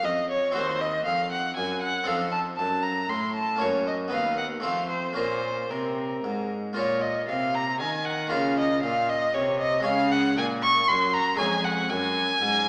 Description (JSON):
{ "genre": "classical, baroque-style sonata movement with continuo", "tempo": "117 BPM", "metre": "3/4", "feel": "straight", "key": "Bb minor", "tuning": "A4 = 440 Hz", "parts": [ { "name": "rich violin", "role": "melody", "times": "0.0-12.7 s", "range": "Bb4 to Db6", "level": "-27 LUFS", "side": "equal", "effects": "none" }, { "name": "harpsichord", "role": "accompaniment", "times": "0.0-12.7 s", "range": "Eb2 to Db5", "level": "-34 LUFS", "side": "equal", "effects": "none" }, { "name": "clear cello", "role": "bass", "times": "0.0-12.7 s", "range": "D#2 to Eb3", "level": "-34 LUFS", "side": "equal", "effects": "none" } ], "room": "wet recital hall reverb, RT60 1.7 s", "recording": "heard from further back in the room, small speaker sound", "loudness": "-26 LUFS", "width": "mono", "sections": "0.0-6.8 A section; 6.8-12.7 B section", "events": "none", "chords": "0.0 Ebm; 0.5 Cdim/Eb; 2.1 F7; 3.6 Gb; 4.1 B/D#; 4.6 F; 5.2 Bbm; 6.8 Bb5; 8.3 Bbm; 9.9 Db5; 11.4 Db/F", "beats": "0.03 | 0.54 1.05 1.56 | 2.07 2.59 3.10 | 3.61 4.13 4.64 | 5.17 5.70 6.24 | 6.76 7.28 7.80 | 8.32 8.83 9.34 | 9.86 10.37 10.89 | 11.40 11.91 12.42" }